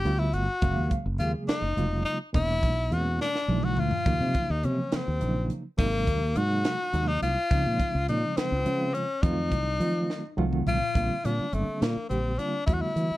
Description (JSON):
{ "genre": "electric jazz fusion", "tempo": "70 BPM (dotted quarters)", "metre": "6/8", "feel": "straight", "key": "unclear", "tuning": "A4 = 435 Hz", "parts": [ { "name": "bright tenor saxophone", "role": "melody", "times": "0.0-13.2 s", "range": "A3 to G4", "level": "-29 LUFS", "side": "left 2 dB", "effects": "slapback echo" }, { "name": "barky reed electric piano", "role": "accompaniment", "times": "0.0-13.2 s", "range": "B2 to Gb5", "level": "-32 LUFS", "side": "right 2 dB", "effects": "overdrive, fast tremolo" }, { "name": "mellow fretless electric bass", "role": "bass", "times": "0.0-13.1 s", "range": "E1 to F3", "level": "-28 LUFS", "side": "equal", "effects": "none" }, { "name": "crisp fusion drum kit", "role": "drums", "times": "0.1-13.1 s", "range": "hi-hat, kick drum, snare drum, toms", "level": "-29 LUFS", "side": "equal", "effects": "none" } ], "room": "little or no reverb", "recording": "dark, warm production", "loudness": "-24 LUFS", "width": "side -16 dB against mid", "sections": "0.0-11.0 A section; 11.0-13.2 B section", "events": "drum fill 3.2-4.1, 10.1-11.0; reed electric piano fill 10.1-11.0", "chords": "0.0 G9; 0.6 Gbmaj9; 2.3 E7#11; 4.1 Ebm9; 5.8 Ab9; 7.5 Dbmaj9; 9.2 F7b9; 11.0 Bb69", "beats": "| 0.63 1.49 | 2.35 3.21 | 4.07 4.93 | 5.79 6.65 | 7.51 8.37 | 9.23 10.10 | 10.96 11.82 | 12.68" }